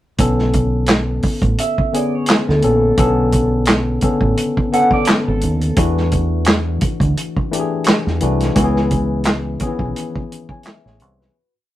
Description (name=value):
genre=R&B, neo-soul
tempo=86 BPM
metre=4/4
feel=swing 56% on 16ths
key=B dorian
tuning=A4 = 438 Hz
part: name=tine electric piano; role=accompaniment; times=0.2-11.5 s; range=C#3 to G#5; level=-20 LUFS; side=left 2 dB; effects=none
part: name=deep dub fingered electric bass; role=bass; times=0.2-11.3 s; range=G#1 to E2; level=-18 LUFS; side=right 1 dB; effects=none
part: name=warm soul drum kit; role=drums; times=0.2-11.3 s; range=handclaps, hi-hat, kick drum, snare drum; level=-17 LUFS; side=right 1 dB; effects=none
part: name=electric guitar through a small old amp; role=second line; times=1.6-5.8 s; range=A4 to F#5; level=-19 LUFS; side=right 1 dB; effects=phaser
room=light reverb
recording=rough rehearsal-room recording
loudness=-14 LUFS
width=side -14 dB against mid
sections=0.2-11.4 verse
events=fade-out 8.6-11.4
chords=0.2 Bm9; 5.8 E9sus4; 8.6 C#m7